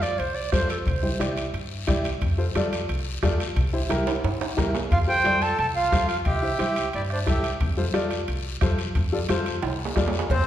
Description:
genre	latin, cumbia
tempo	178 BPM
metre	4/4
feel	straight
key	F major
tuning	A4 = 440 Hz
part	warm clarinet	melody	0.0-1.2, 4.9-7.5 s	A4 to A5	-26 LUFS	right 2 dB	none
part	warm upright piano	accompaniment	0.0-10.1 s	E4 to D5	-29 LUFS	left 2 dB	none
part	upright bass	bass	0.0-10.5 s	C2 to G2	-28 LUFS	equal	none
part	guiro	percussion	0.0-10.5 s	none	-38 LUFS	left 6 dB	none
part	timbales and cowbell	percussion	0.0-10.5 s	none	-34 LUFS	right 5 dB	none
part	bombo	percussion	0.5-10.5 s	none	-28 LUFS	left 1 dB	none
part	congas	percussion	0.5-10.1 s	none	-34 LUFS	right 1 dB	none
part	accordion	second line	4.9-7.5, 10.3-10.5 s	C4 to C5	-28 LUFS	equal	none
room	wet recital hall reverb, RT60 1.4 s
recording	recorded in a church or concert hall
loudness	-22 LUFS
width	side -11 dB against mid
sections	0.0-10.3 A section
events	drum fill 4.1-4.9, 9.6-10.3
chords	0.0 F; 0.9 C; 2.2 F; 3.6 C7; 4.9 F; 6.3 C; 7.6 F

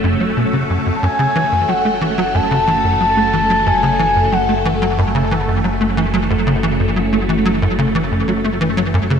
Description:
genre	ambient, sequencer-driven space music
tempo	91 BPM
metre	4/4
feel	straight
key	F# minor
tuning	A4 = 440 Hz
part	phased string machine	sustained chords	0.0-9.2 s	A3 to F#4	-20 LUFS	equal	ensemble chorus, phaser
part	tight sequencer bass	riff	0.0-9.2 s	F#2 to A3	-17 LUFS	equal	ensemble chorus, tape echo
part	analog drone	bass	0.0-9.2 s	F#1	-24 LUFS	equal	chorus
part	expressive synth lead	melody	1.0-5.0 s	F#5 to A5	-18 LUFS	left 1 dB	chorus, tape echo
room	wet lush hall reverb, RT60 3.0 s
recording	none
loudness	-14 LUFS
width	side -7 dB against mid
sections	0.0-9.2 A section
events	fade-in on synth drone 0.0-9.2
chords	0.0 F#m

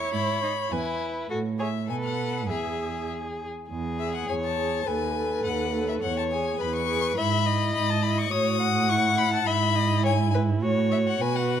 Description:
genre	quick classical-period movement for string quartet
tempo	104 BPM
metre	2/4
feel	straight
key	E major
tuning	A4 = 439 Hz
part	clear violin	melody	0.0-11.6 s	E5 to D#6	-29 LUFS	left 11 dB	none
part	rich violin	second line	0.0-11.6 s	D#4 to F#5	-29 LUFS	left 3 dB	none
part	dark viola	accompaniment	0.0-11.6 s	E4 to C#5	-31 LUFS	right 2 dB	none
part	warm cello	bass	0.0-11.6 s	D#2 to B2	-28 LUFS	right 4 dB	none
room	light reverb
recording	close, detailed microphones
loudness	-23 LUFS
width	side -9 dB against mid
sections	0.0-3.7 A section; 3.7-11.6 A section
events	none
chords	0.1 E/G#; 1.3 F#m7/A (rootless); 1.9 B5; 2.5 E; 4.9 B7/D#; 6.0 E; 7.2 E/G#; 8.3 A5; 9.5 E/G#; 10.6 F#m/A

